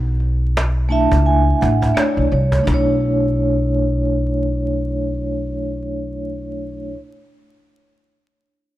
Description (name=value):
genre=hip hop, jazz-hop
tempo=85 BPM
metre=4/4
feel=swing 58% on 16ths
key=B minor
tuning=A4 = 440 Hz
part: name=upright bass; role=bass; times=0.0-6.9 s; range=A1 to C#2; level=-19 LUFS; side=equal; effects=none
part: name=cajon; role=drums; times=0.2-2.9 s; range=none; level=-24 LUFS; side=equal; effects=none
part: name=vibraphone with soft mallets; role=accompaniment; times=0.9-7.0 s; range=A3 to A5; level=-19 LUFS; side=equal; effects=none
room=light reverb, small room ambience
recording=vinyl crackle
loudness=-16 LUFS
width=side -14 dB against mid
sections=0.0-2.7 A section; 2.7-5.5 B section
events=vibraphone fill 0.6-2.7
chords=0.0 Bm11